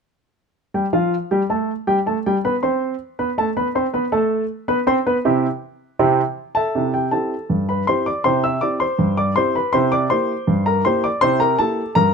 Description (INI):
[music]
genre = ragtime piano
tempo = 80 BPM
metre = 2/4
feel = straight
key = C major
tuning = A4 = 439 Hz
[part]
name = warm grand piano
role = solo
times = 0.7-12.1 s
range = G2 to E6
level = -17 LUFS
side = equal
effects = none
[sound]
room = light reverb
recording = close, detailed microphones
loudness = -17 LUFS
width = side -5 dB against mid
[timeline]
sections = 0.7-6.7 A section; 6.7-12.1 B section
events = none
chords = 0.7 C5; 6.7 C; 9.7 C7